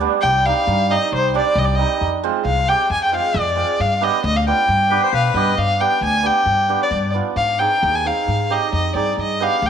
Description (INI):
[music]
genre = klezmer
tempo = 134 BPM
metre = 2/4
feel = straight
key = G phrygian dominant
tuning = A4 = 440 Hz
[part]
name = hammered dulcimer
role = accompaniment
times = 0.0-9.5 s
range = G3 to Ab4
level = -22 LUFS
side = right 10 dB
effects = none
[part]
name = upright bass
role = bass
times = 0.0-9.7 s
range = C2 to B2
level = -22 LUFS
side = left 2 dB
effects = none
[part]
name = warm violin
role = melody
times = 0.2-9.7 s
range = C5 to Ab5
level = -18 LUFS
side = left 2 dB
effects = none
[part]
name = accordion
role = second line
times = 4.9-5.5 s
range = B4 to C5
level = -22 LUFS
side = left 10 dB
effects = none
[sound]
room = moderate echo chamber reverb, RT60 1.6 s, small room reverb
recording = 1960s-style stereo with parts hard left and right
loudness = -15 LUFS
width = side -8 dB against mid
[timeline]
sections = 0.0-5.6 A section; 5.6-9.7 B section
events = none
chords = 0.2 Cm; 2.0 Fm; 3.8 G; 7.4 Ab; 9.2 G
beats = | 0.22 0.67 | 1.11 1.56 | 2.01 2.45 | 2.90 3.35 | 3.79 4.24 | 4.69 5.14 | 5.58 6.03 | 6.48 6.93 | 7.38 7.83 | 8.27 8.72 | 9.17 9.62